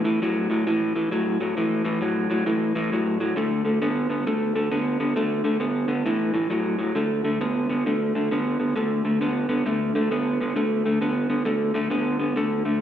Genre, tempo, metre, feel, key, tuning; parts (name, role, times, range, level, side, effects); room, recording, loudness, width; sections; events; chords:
blues; 133 BPM; 4/4; swing 64% on 8ths; D major; A4 = 440 Hz
electric guitar through a small old amp; solo; 0.0-12.8 s; A2 to B3; -21 LUFS; equal; slapback echo
light reverb; live gig heard through the venue's PA, recital hall reverb; -21 LUFS; side -10 dB against mid
0.0-7.0 A section; 7.0-12.8 B section
0.0 A5; 3.4 D5; 6.1 A5; 7.0 D5